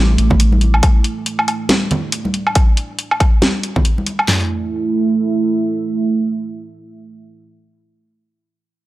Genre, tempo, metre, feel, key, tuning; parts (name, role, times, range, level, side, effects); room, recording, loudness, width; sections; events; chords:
deep dubstep; 139 BPM; 4/4; swing 59% on 16ths, half-time; A4 = 442 Hz
dark analog pad; sustained chords; 0.0-7.5 s; A3 to E5; -20 LUFS; right 3 dB; chorus
saturated sub bass; bass; 0.0-0.8 s; A1; -13 LUFS; equal
garage drum kit; drums; 0.2-4.3 s; hi-hat, snare drum, woodblock; -18 LUFS; equal
dubstep drum kit; drums; 0.3-4.4 s; handclaps, kick drum, snare drum, toms; -14 LUFS; equal; overdrive
congas; percussion; 0.3-4.0 s; -21 LUFS; right 1 dB; dub echo
light reverb, digital ambience; dry, gritty hardware recording; -14 LUFS; side -16 dB against mid
0.0-4.3 A section; 4.3-7.7 B section
0.0 A5